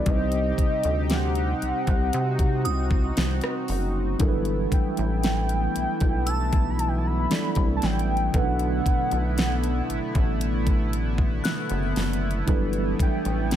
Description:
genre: contemporary R&B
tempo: 58 BPM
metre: 4/4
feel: straight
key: G major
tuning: A4 = 439 Hz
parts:
  - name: warm velvety synth lead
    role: melody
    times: 0.0-13.6 s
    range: Eb5 to B5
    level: -30 LUFS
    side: equal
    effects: chorus
  - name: mellow tine electric piano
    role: accompaniment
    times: 0.0-13.6 s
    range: B2 to D5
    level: -30 LUFS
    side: right 2 dB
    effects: medium stereo tremolo
  - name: chorused pulse-width pad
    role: sustained chords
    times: 0.0-13.6 s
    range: D3 to G4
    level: -30 LUFS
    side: left 1 dB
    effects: none
  - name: glassy synth bell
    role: texture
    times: 0.0-13.0 s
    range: D6 to F#6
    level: -36 LUFS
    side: equal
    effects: chorus, phaser, digital delay
  - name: rubbery square bass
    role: bass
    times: 0.1-13.6 s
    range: F#1 to C3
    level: -26 LUFS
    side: equal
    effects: none
  - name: smooth R&B drum kit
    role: drums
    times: 0.1-13.6 s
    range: hi-hat, kick drum, rim click, snare drum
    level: -25 LUFS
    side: equal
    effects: none
room: digital ambience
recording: none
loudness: -22 LUFS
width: side -10 dB against mid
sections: 0.0-13.6 A section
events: none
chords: 0.1 Cmadd9; 4.2 Gmaj13; 8.3 Bm7; 12.5 Gmaj13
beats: | 0.06 1.10 2.13 3.17 | 4.20 5.24 6.27 7.30 | 8.34 9.37 10.41 11.44 | 12.48 13.51

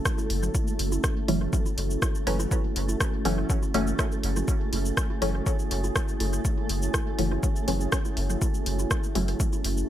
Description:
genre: dub techno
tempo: 122 BPM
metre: 4/4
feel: straight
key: F# minor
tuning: A4 = 440 Hz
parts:
  - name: deep dark ambient pad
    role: sustained chords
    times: 0.0-9.9 s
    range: C#4 to A4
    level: -34 LUFS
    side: right 2 dB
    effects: chorus, built-in reverb, vintage 12-bit sampler grit, sidechain pumping
  - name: flickering grainy texture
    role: texture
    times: 0.0-9.9 s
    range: A3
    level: -36 LUFS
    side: equal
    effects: built-in reverb, sidechain pumping
  - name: deep house drum kit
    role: drums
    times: 0.1-9.9 s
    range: hi-hat, rim click, shaker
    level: -32 LUFS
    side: equal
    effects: dub echo
  - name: electronic kick drum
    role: drums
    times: 0.1-9.5 s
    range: none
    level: -28 LUFS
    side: equal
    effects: none
  - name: bongos and congas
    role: percussion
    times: 0.2-9.6 s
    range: none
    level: -39 LUFS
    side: right 3 dB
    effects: none
  - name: soft dub sub bass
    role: bass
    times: 0.3-9.8 s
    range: F#1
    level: -28 LUFS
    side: equal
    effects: tube saturation, sidechain pumping
  - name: filtered dub chord stab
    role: stabs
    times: 1.3-9.2 s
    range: E3 to C#4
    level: -30 LUFS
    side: left 1 dB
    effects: chorus, phaser, sidechain pumping, dub echo
room: little or no reverb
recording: echo-heavy mix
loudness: -24 LUFS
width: side -12 dB against mid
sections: 0.0-9.9 A section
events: filter sweep on synth stab 0.0-9.9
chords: 0.0 F#m7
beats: 0.06 | 0.55 1.04 1.53 2.02 | 2.51 3.01 3.50 3.99 | 4.48 4.97 5.46 5.96 | 6.45 6.94 7.43 7.92 | 8.41 8.91 9.40

